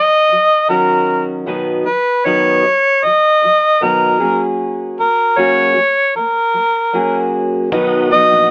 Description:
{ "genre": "acoustic pop", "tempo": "77 BPM", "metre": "4/4", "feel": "swing 55% on 16ths", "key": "B major", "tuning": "A4 = 436 Hz", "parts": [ { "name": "clear harmonica", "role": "melody", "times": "0.0-8.5 s", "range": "A#4 to D#5", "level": "-14 LUFS", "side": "equal", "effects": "none" }, { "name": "fingerpicked steel-string acoustic guitar", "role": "accompaniment", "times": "0.0-8.5 s", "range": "B2 to B4", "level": "-19 LUFS", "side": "equal", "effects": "none" }, { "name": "bright tonewheel organ", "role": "sustained chords", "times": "7.7-8.5 s", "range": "B4 to D#6", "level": "-24 LUFS", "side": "equal", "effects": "overdrive, chorus vibrato, slow rotary speaker" }, { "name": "nylon-string guitar", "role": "arpeggios", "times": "7.7-8.5 s", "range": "F#3 to B3", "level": "-33 LUFS", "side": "equal", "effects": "none" }, { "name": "fingered electric bass", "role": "bass", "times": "7.7-8.5 s", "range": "A#1 to B1", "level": "-30 LUFS", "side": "equal", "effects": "none" }, { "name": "kick drum and shaker", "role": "drums", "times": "7.7-8.5 s", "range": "none", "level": "-30 LUFS", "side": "equal", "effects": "none" } ], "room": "light reverb", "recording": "telephone sound", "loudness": "-14 LUFS", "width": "mono", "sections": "0.0-7.7 A section", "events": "none", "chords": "0.0 D#m7; 1.5 B; 4.2 F#add9; 7.7 B", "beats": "0.68 | 1.47 2.25 3.03 3.81 | 4.59 5.38 6.16 6.94 | 7.72 8.50" }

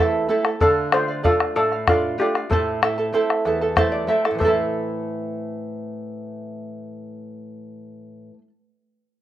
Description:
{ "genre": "andean folk, Andean ensemble", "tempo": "63 BPM (dotted quarters)", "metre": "6/8", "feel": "straight", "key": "A minor", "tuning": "A4 = 440 Hz", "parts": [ { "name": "charango", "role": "accompaniment", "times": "0.0-8.5 s", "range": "E4 to A5", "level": "-22 LUFS", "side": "right 3 dB", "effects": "plate reverb" }, { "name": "nylon-string guitar", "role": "accompaniment", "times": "0.0-8.5 s", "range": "E2 to E5", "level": "-28 LUFS", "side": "left 1 dB", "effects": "plate reverb" }, { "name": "bombo", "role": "percussion", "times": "0.4-4.7 s", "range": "none", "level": "-21 LUFS", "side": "left 3 dB", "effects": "none" }, { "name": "steel pan", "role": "melody", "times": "0.6-8.4 s", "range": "F4 to C5", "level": "-22 LUFS", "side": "left 2 dB", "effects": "plate reverb" } ], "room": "wet studio reverb, RT60 0.6 s", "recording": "rough home demo mix", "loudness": "-18 LUFS", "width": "side -12 dB against mid", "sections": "0.0-4.4 A section; 4.4-8.2 B section", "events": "nylon-string guitar fill 3.5-4.4", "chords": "0.0 Am; 0.6 Dm; 2.5 Am", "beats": "| 0.61 1.56 | 2.51 3.45 | 4.40 5.35 | 6.30 7.25" }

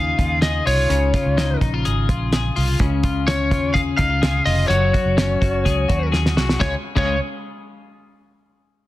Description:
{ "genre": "jangly indie pop", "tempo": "126 BPM", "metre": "4/4", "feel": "straight", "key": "Db major", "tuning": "A4 = 440 Hz", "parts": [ { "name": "lightly driven lead guitar", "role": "melody", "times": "0.0-7.2 s", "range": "Db5 to F5", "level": "-22 LUFS", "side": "left 1 dB", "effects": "slapback echo" }, { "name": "twelve-string electric guitar", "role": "arpeggios", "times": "0.0-7.2 s", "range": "Db3 to Ab4", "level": "-23 LUFS", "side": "left 4 dB", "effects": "spring reverb, slapback echo" }, { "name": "vintage muted fingered electric bass", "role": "bass", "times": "0.0-7.2 s", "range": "F1 to Eb2", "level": "-22 LUFS", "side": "right 1 dB", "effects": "none" }, { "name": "cloth-damped thuddy drum kit", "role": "drums", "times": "0.2-7.1 s", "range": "crash cymbal, hi-hat, kick drum, snare drum", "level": "-21 LUFS", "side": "equal", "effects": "none" } ], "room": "small room ambience", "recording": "dense, heavily limited modern master", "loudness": "-16 LUFS", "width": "side -16 dB against mid", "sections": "0.0-6.6 A section; 6.6-8.5 B section", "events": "drum fill 6.1-6.6", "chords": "0.0 Dbadd9; 2.8 Db; 4.7 Gbsus2; 6.6 Db", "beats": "0.42 | 0.90 1.38 1.85 2.33 | 2.80 3.28 3.75 4.23 | 4.71 5.18 5.66 6.13 | 6.61 7.08" }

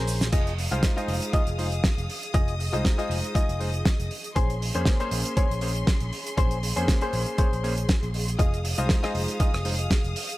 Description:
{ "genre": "nu-disco, nu disco", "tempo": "119 BPM", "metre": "4/4", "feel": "swing 55% on 16ths", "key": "unclear", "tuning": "A4 = 441 Hz", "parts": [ { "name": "warm symphonic string section", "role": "sustained chords", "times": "0.0-10.4 s", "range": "Db4 to Eb6", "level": "-36 LUFS", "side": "left 1 dB", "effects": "sidechain pumping" }, { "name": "direct-recorded clean electric guitar", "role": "riff", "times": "0.0-9.9 s", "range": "Db4 to F5", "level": "-32 LUFS", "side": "left 3 dB", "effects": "lush chorus, tape echo" }, { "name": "picked electric bass", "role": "bass", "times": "0.0-10.1 s", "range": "F1 to F2", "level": "-28 LUFS", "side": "equal", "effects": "tube saturation" }, { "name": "damped 70s drum kit", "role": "drums", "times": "0.1-10.4 s", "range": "crash cymbal, hi-hat, rim click, shaker, snare drum", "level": "-30 LUFS", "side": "right 1 dB", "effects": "none" }, { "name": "electronic kick drum", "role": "drums", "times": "0.3-10.0 s", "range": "none", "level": "-23 LUFS", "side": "equal", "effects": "overdrive" }, { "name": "warm electric grand piano", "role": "accompaniment", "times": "0.7-9.7 s", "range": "Ab3 to Eb5", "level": "-33 LUFS", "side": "equal", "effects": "tape echo" } ], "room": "small room ambience", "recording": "dry, gritty hardware recording", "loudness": "-23 LUFS", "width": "side -17 dB against mid", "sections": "0.3-10.4 A section", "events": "break 0.0-0.3; drum fill 0.0-0.3", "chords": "0.3 Fm7; 4.4 Bbm9; 8.4 Fm7", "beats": "| 0.33 0.83 1.34 1.84 | 2.34 2.85 3.35 3.86 | 4.36 4.87 5.37 5.87 | 6.38 6.88 7.39 7.89 | 8.39 8.90 9.40 9.91" }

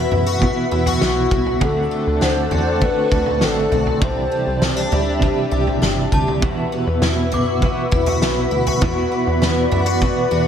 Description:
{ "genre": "dream pop", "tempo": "100 BPM", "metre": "4/4", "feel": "straight", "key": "E minor", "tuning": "A4 = 441 Hz", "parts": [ { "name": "hollow clarinet-like synth lead", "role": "melody", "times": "0.0-5.2 s", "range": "F#4 to C5", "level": "-23 LUFS", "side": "left 2 dB", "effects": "chorus, tape echo" }, { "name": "clean electric guitar", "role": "accompaniment", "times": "0.0-10.5 s", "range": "E2 to F#4", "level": "-22 LUFS", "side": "right 3 dB", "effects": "tremolo, wide subtle chorus" }, { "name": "soft string machine", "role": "sustained chords", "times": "0.0-10.5 s", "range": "F#4 to B5", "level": "-24 LUFS", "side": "equal", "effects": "ensemble chorus" }, { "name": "picked twelve-string acoustic guitar", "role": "arpeggios", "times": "0.0-10.5 s", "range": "E2 to G4", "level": "-24 LUFS", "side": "left 5 dB", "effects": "analog chorus, tape echo" }, { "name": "plucky analog bass", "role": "bass", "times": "0.0-10.5 s", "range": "G1 to F#2", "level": "-22 LUFS", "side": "equal", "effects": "none" }, { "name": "loose indie drum kit", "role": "drums", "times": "0.1-10.2 s", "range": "kick drum, snare drum, toms", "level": "-22 LUFS", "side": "equal", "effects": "none" }, { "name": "synth chime", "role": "texture", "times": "2.2-8.6 s", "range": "F#5 to D6", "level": "-30 LUFS", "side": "right 1 dB", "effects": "ensemble chorus, tape echo" } ], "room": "moderate lush hall reverb, RT60 1.8 s, small room ambience", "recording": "none", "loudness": "-16 LUFS", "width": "side -8 dB against mid", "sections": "0.0-10.5 A section", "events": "none", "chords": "0.0 Esus2; 1.6 D7; 4.0 Cadd9; 6.4 Esus2", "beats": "0.42 1.02 | 1.62 2.22 2.82 3.42 | 4.02 4.62 5.22 5.82 | 6.42 7.02 7.62 8.22 | 8.82 9.42 10.02" }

